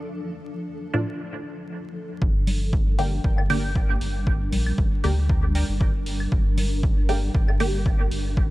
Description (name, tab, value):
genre	dub techno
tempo	117 BPM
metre	4/4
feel	swing 54% on 16ths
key	G minor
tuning	A4 = 439 Hz
part	granular cloud pad	sustained chords	0.0-8.5 s	F3 to Bb4	-33 LUFS	equal	built-in reverb, sidechain pumping
part	warbly lo-fi synth keys	riff	0.9-7.2 s	F4 to G5	-40 LUFS	right 2 dB	chorus, sidechain pumping, dub echo
part	filtered dub chord stab	stabs	0.9-7.8 s	A2 to G4	-28 LUFS	right 1 dB	phaser, sidechain pumping, dub echo
part	round analog bass	bass	2.2-8.5 s	G1 to D2	-25 LUFS	equal	sidechain pumping
part	electronic kick drum	drums	2.2-8.5 s	none	-22 LUFS	equal	none
part	electronic hi-hat	drums	2.5-8.2 s	none	-37 LUFS	right 1 dB	low-pass filter on hats
part	congas and claves	percussion	2.5-7.6 s	none	-34 LUFS	left 2 dB	sidechain pumping on perc, dub echo
room	digital ambience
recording	dark, warm production, vinyl crackle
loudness	-21 LUFS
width	side -18 dB against mid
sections	0.0-2.2 A section; 2.2-8.5 B section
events	none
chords	0.0 Dm; 2.2 Gm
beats	| 0.17 0.68 1.19 1.71 | 2.22 2.73 3.24 3.76 | 4.27 4.78 5.29 5.81 | 6.32 6.83 7.35 7.86 | 8.37